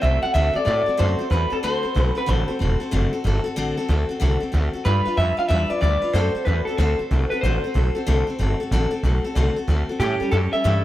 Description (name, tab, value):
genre	rock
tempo	187 BPM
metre	4/4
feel	swing 64% on 8ths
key	D mixolydian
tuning	A4 = 440 Hz
part	electric guitar through a small old amp	melody	0.0-10.8 s	G4 to F#5	-23 LUFS	equal	spring reverb, tape echo
part	picked steel-string acoustic guitar	accompaniment	0.0-10.8 s	A2 to B4	-26 LUFS	left 3 dB	none
part	upright bass	bass	0.0-10.8 s	E1 to A2	-20 LUFS	equal	none
room	little or no reverb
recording	none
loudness	-19 LUFS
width	side -14 dB against mid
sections	0.0-10.8 A section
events	none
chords	0.0 D7; 4.9 G7; 6.1 D7; 10.0 A7